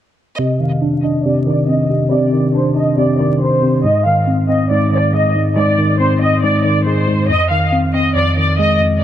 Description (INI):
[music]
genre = hip hop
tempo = 139 BPM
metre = 4/4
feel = half-time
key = C minor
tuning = A4 = 440 Hz
[part]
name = rich studio violin section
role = melody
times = 0.4-8.8 s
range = C5 to F5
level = -17 LUFS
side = equal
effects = low-pass filter, dub echo
[part]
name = mellow tine electric piano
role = accompaniment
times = 0.4-9.0 s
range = F2 to D4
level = -14 LUFS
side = equal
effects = medium stereo tremolo, low-pass filter
[sound]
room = light reverb, small room ambience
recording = echo-heavy mix, vinyl crackle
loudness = -12 LUFS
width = side -11 dB against mid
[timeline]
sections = 0.4-9.0 A section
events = filter sweep 0.4-9.0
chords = 0.4 Cmadd9; 3.8 Ab; 7.3 Fm7